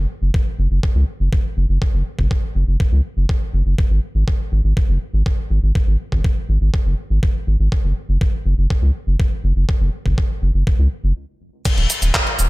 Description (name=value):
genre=italo disco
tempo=122 BPM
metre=4/4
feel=straight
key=unclear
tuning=A4 = 439 Hz
part: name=round analog bass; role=bass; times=0.0-12.5 s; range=Eb1 to Db2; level=-16 LUFS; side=equal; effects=none
part: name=electronic kick drum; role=drums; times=0.3-12.2 s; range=none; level=-20 LUFS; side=equal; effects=none
part: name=detuned 8-bit digital drum machine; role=drums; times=11.7-12.5 s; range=cabasa, crash cymbal, handclaps, hi-hat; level=-18 LUFS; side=equal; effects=low-pass filter on hats, low-pass filter on cymbals, low-pass filter on perc, low-pass filter on snare, low-pass filter on room, gated reverb
room=little or no reverb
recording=none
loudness=-16 LUFS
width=side -22 dB against mid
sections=0.0-11.7 A section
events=stop 11.2-11.7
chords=none